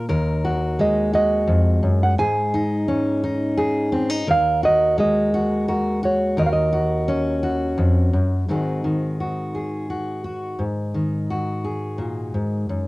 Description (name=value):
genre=acoustic folk-pop ballad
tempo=86 BPM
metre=3/4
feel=straight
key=unclear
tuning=A4 = 440 Hz
part: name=fingerpicked steel-string acoustic guitar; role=accompaniment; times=0.0-12.9 s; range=Eb2 to Bb4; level=-20 LUFS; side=left 1 dB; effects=cassette tape
part: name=nylon-string guitar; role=melody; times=0.8-7.7 s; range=Bb4 to Ab5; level=-20 LUFS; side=right 2 dB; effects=cassette tape
room=moderate booth ambience, RT60 0.3 s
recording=home recording on cassette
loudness=-19 LUFS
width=side -20 dB against mid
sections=0.0-8.5 A section; 8.5-12.9 B section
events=none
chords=0.1 Ebm; 2.2 Absus4; 4.3 Ebm; 6.4 Ebm7; 8.5 Ab7